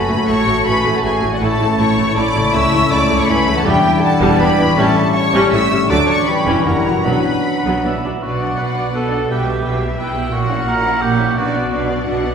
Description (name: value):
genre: classical, dramatic, fast romantic movement for symphony orchestra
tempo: 148-175 BPM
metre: 3/4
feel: rubato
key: B minor from 3.7 s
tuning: A4 = 440 Hz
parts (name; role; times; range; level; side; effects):
- rich symphonic violin section; melody; 0.0-12.3 s; B4 to E6; -21 LUFS; left 1 dB; none
- bright clarinet; second line; 0.0-8.1 s; D4 to F#4; -24 LUFS; equal; none
- rich symphonic violin section; second line; 0.0-12.3 s; F#4 to G5; -24 LUFS; left 1 dB; none
- silver concert flute; second line; 0.0-8.0 s; D5 to C#6; -23 LUFS; left 1 dB; none
- warm cor anglais; second line; 0.0-11.9 s; E4 to D5; -23 LUFS; right 2 dB; none
- warm bassoon; accompaniment; 0.0-8.0 s; F#3 to A3; -24 LUFS; right 2 dB; none
- mellow French horn section; sustained chords; 0.0-8.0 s; F#3 to F#4; -22 LUFS; left 3 dB; none
- concert harp; arpeggios; 0.0-12.3 s; F#2 to B4; -24 LUFS; left 4 dB; none
- rich symphonic viola section; accompaniment; 0.1-12.3 s; E3 to D5; -21 LUFS; equal; none
- rich symphonic cello section; bass; 0.1-12.3 s; C#2 to B2; -24 LUFS; right 2 dB; none
- rich symphonic double bass section; bass; 0.1-12.3 s; E1 to D2; -24 LUFS; right 2 dB; none
- timpani; percussion; 7.1-7.6 s; B2; -28 LUFS; right 2 dB; none
room: wet recital hall reverb, RT60 1.5 s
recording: recorded in a church or concert hall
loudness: -13 LUFS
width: side -7 dB against mid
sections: 0.0-8.2 A section; 8.2-12.3 B section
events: none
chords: 0.3 F#m/A; 1.4 A; 2.5 A/C#; 3.7 Em7; 4.8 A7; 5.9 D; 6.3 C#dim/E; 6.7 F#7b9; 7.1 Bm; 9.3 Em/B; 10.3 F#7/A#; 11.4 Bm